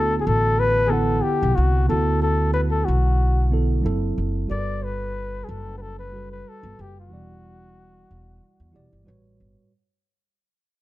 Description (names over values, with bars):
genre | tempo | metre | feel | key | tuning
R&B, neo-soul | 92 BPM | 4/4 | straight | D mixolydian | A4 = 441 Hz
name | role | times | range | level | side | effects
mellow flugelhorn | melody | 0.0-8.9 s | F#4 to D5 | -24 LUFS | left 2 dB | none
mellow tine electric piano | accompaniment | 0.0-9.7 s | A2 to F#5 | -27 LUFS | right 3 dB | none
upright bass | bass | 0.0-9.5 s | E1 to E2 | -22 LUFS | equal | none
room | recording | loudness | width
small room ambience | dark, warm production | -19 LUFS | side -16 dB against mid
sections
0.0-9.7 A section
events
fade-out 0.0-9.7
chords
0.0 D69; 3.8 F#m7b5; 4.5 Gmaj9; 7.1 Em7; 9.1 A13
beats
0.57 1.23 | 1.88 2.53 3.18 3.84 | 4.49 5.14 5.79 6.44 | 7.10 7.75 8.40 9.05